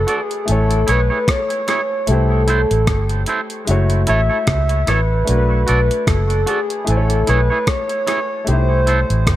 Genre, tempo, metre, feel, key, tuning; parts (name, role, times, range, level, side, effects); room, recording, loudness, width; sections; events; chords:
lovers rock reggae; 75 BPM; 4/4; swing 56% on 16ths; A major; A4 = 435 Hz
reedy FM lead; melody; 0.0-9.4 s; G#4 to E5; -20 LUFS; equal; chorus, tremolo, dub echo
clear concert grand piano; accompaniment; 0.0-9.4 s; G#3 to G#5; -24 LUFS; left 3 dB
vintage muted fingered electric bass; bass; 0.0-9.4 s; F#1 to C#2; -16 LUFS; equal
twangy electric guitar; stabs; 0.1-9.0 s; E4 to D5; -23 LUFS; right 3 dB; dub echo
clean 12-bit digital drum machine; drums; 0.1-9.4 s; hi-hat, kick drum, rim click; -21 LUFS; equal
little or no reverb; -14 LUFS; side -14 dB against mid
0.0-9.4 A section
0.5 Amaj7; 2.1 C6; 3.7 F#m7; 5.3 Bm7; 6.9 Amaj7; 8.5 C6